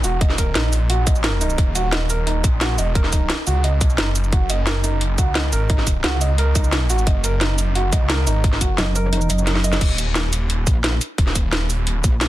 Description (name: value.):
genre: dark technical drum and bass.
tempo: 175 BPM.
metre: 4/4.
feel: straight.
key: Eb phrygian.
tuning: A4 = 437 Hz.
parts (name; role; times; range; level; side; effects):
felt-muted upright piano; arpeggios; 0.0-9.7 s; Eb4 to Eb5; -25 LUFS; right 3 dB; sidechain pumping, digital delay.
snarling distorted saw bass; bass; 0.0-12.0 s; Eb1 to Db2; -20 LUFS; equal; distortion, overdrive, sidechain pumping.
drum and bass drum kit; drums; 0.0-12.3 s; cabasa, crash cymbal, hi-hat, snare drum; -22 LUFS; equal; none.
electronic kick drum; drums; 0.2-12.1 s; none; -18 LUFS; equal; none.
metallic wobble bass; bass; 8.8-12.3 s; Gb1 to Bb1; -19 LUFS; equal; chorus.
room: little or no reverb.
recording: dense, heavily limited modern master.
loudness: -16 LUFS.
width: side -15 dB against mid.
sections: 0.0-9.8 A section; 9.8-12.3 A section.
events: drop 0.0-9.8, 9.8-12.3; kick drops out 9.1-9.8; drum fill 9.5-9.8.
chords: 0.0 Ebm; 4.3 Gbadd9; 9.8 Eb5.